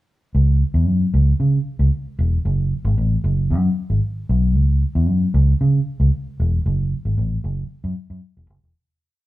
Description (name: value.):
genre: funk.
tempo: 114 BPM.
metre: 4/4.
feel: straight.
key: C# minor.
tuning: A4 = 440 Hz.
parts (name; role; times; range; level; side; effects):
vintage muted fingered electric bass; solo; 0.3-8.7 s; E1 to C#3; -16 LUFS; equal; none.
room: moderate large studio reverb, RT60 1.1 s.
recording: band playing live in one room.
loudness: -17 LUFS.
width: side -16 dB against mid.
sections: 0.3-8.8 breakdown.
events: fade-out 6.7-8.8.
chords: none.